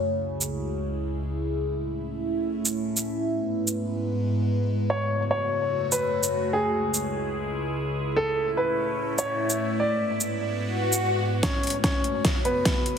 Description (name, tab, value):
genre	heavy wobble dubstep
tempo	147 BPM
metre	4/4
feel	swing 53% on 16ths, half-time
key	F# minor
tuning	A4 = 441 Hz
part	evolving wavetable pad	sustained chords	0.0-13.0 s	C#2 to E5	-27 LUFS	equal	phaser, built-in reverb, sidechain pumping
part	dubstep drum kit	drums	0.4-12.9 s	hi-hat, shaker, snare drum	-26 LUFS	right 1 dB	overdrive
part	warm grand piano	melody	4.9-13.0 s	B3 to D5	-27 LUFS	equal	ping-pong delay
part	swell	sound effects	10.7-11.4 s	none	-27 LUFS	left 2 dB	none
part	electronic kick drum	drums	11.4-12.7 s	none	-26 LUFS	equal	overdrive
room	moderate plate reverb, RT60 2.1 s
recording	heavily compressed radio sound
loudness	-24 LUFS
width	side -7 dB against mid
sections	0.0-11.4 A section; 11.4-13.0 B section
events	filter sweep on ambient pad 0.0-11.4; swell 10.7-11.4; build-up 11.4-13.0; drum fill 11.4-13.0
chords	0.0 C#m; 1.6 A; 3.3 E/G#; 4.9 F#m; 6.5 C#m; 8.2 A; 9.8 E/G#; 11.4 F#m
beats	| 0.00 0.41 0.82 1.23 | 1.63 2.04 2.45 2.86 | 3.27 3.67 4.08 4.49 | 4.90 5.31 5.72 6.12 | 6.53 6.94 7.35 7.76 | 8.16 8.57 8.98 9.39 | 9.80 10.21 10.61 11.02 | 11.43 11.84 12.25 12.65